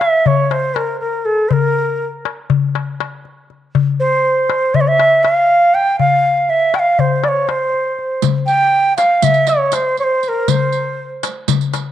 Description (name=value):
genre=Turkish makam ensemble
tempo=241 BPM (eighths)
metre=9/8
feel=straight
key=C makam hicaz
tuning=A4 = 440 Hz
part: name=bright reedy bansuri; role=melody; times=0.0-11.0 s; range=A4-35c to G5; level=-13 LUFS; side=right 1 dB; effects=none
part: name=darbuka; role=percussion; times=0.0-11.9 s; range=none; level=-18 LUFS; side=left 7 dB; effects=none
part: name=riq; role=percussion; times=8.2-11.8 s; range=none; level=-23 LUFS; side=right 14 dB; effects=none
room=wet spring reverb, RT60 1.6 s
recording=1960s-style stereo with parts hard left and right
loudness=-13 LUFS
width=side -11 dB against mid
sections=0.0-11.9 A section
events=none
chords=none